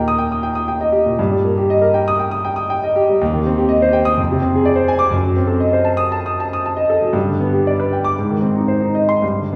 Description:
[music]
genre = classical, romantic character piece for solo piano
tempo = 104-127 BPM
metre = 4/4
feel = rubato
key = Eb major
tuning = A4 = 440 Hz
[part]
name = clear concert grand piano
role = solo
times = 0.0-9.6 s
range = Eb2 to Eb6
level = -17 LUFS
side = equal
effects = none
[sound]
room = wet recital hall reverb, RT60 1.7 s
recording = heard from further back in the room, small room ambience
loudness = -17 LUFS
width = mono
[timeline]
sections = 0.0-9.6 A section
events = none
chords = 0.0 Eb; 1.2 Eb/G; 3.2 Cm/Eb; 4.2 Dm7b5/F; 5.1 F#dim7; 7.2 G; 8.1 Ab

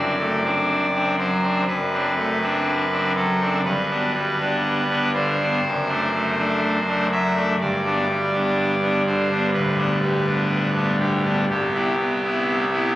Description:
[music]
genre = classical, chorale-style piece for pipe organ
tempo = 61 BPM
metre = 4/4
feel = rubato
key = G major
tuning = A4 = 440 Hz
[part]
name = pipe organ, trumpet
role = solo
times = 0.0-13.0 s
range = D1 to E5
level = -19 LUFS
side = equal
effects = none
[sound]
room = wet cathedral reverb, RT60 4.4 s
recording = recorded on a phone in the room, club reverb, compression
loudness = -19 LUFS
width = side -15 dB against mid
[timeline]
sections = 0.0-13.0 A section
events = none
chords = 0.0 D7/F#; 3.7 G; 5.6 D7/F#; 7.6 G; 11.5 Cmaj7

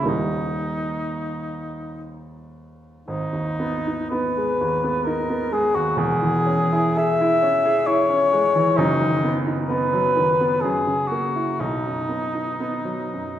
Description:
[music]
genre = classical, romantic duo for cor anglais and grand piano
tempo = 52-68 BPM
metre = 3/4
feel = rubato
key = B major from 3.1 s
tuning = A4 = 443 Hz
[part]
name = dark cor anglais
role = melody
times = 0.0-13.4 s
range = D#4 to E5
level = -22 LUFS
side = left 1 dB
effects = none
[part]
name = warm baby grand piano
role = accompaniment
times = 0.0-13.4 s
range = D#1 to G#4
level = -23 LUFS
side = right 1 dB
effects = none
[sound]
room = wet recital hall reverb, RT60 1.4 s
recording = heard from further back in the room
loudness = -19 LUFS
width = side -11 dB against mid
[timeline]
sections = 0.0-13.4 A section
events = none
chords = 0.1 D#; 3.1 G#m; 6.0 C#m/E; 8.8 B/F#; 10.6 F#7; 11.6 B

